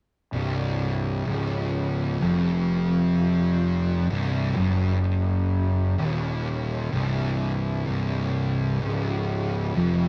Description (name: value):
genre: metal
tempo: 64 BPM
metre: 4/4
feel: straight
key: unclear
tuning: A4 = 440 Hz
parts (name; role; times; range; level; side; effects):
- thick fuzz guitar; riff; 0.3-10.1 s; C2 to F#2; -26 LUFS; equal; distortion
- fuzz fingered electric bass; bass; 0.3-10.1 s; C1 to F#1; -30 LUFS; equal; overdrive
room: light reverb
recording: rough rehearsal-room recording, tube saturation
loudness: -25 LUFS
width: mono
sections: 0.3-10.1 A section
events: none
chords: 0.3 Cm